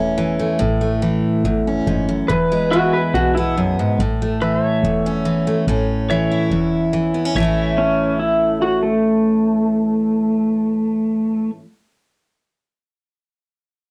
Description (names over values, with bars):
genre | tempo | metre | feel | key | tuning
honky-tonk and classic country | 142 BPM | 4/4 | straight | A major | A4 = 440 Hz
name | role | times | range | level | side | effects
picked steel-string acoustic guitar | accompaniment | 0.0-11.6 s | E2 to E4 | -21 LUFS | equal | none
pedal steel guitar | sustained chords | 0.0-11.5 s | B4 to E5 | -28 LUFS | equal | subtle chorus
woody FM bass | bass | 0.0-11.5 s | E1 to B1 | -28 LUFS | equal | none
pedal steel guitar | second line | 2.3-3.6, 7.8-11.5 s | A3 to B4 | -19 LUFS | equal | none
room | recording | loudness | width
light reverb | home recording on cassette | -18 LUFS | mono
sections
0.0-5.7 A section; 5.7-7.4 B section; 7.4-10.7 C section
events
none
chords
0.0 A; 2.3 E; 4.0 A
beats
0.19 | 0.61 1.03 1.45 1.87 | 2.29 2.72 3.14 3.56 | 3.98 4.40 4.83 5.25 | 5.67 6.09 6.51 6.93 | 7.36 7.78 8.20 8.62 | 9.05 9.47 9.89 10.32